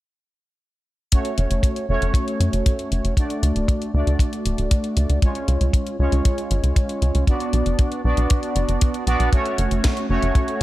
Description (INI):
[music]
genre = italo disco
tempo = 117 BPM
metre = 4/4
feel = straight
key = F# harmonic minor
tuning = A4 = 438 Hz
[part]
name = analog synth brass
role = stabs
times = 1.1-10.6 s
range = G#3 to D5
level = -24 LUFS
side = right 1 dB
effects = chorus, tape echo
[part]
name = house drum kit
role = drums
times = 1.1-10.6 s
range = hi-hat, snare drum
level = -29 LUFS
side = left 3 dB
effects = none
[part]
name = kick drum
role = drums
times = 1.1-10.5 s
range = none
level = -18 LUFS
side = equal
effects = none
[part]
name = tight sequencer bass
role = bass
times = 1.4-10.6 s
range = D1 to F#2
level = -20 LUFS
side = equal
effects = none
[sound]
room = light reverb, studio reverb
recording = none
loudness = -18 LUFS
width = side -16 dB against mid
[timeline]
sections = 1.1-10.6 A section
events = filter sweep on analog polysynth 1.1-10.6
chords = 1.1 F#m; 3.2 D; 5.2 C#; 7.3 Bm; 9.3 F#m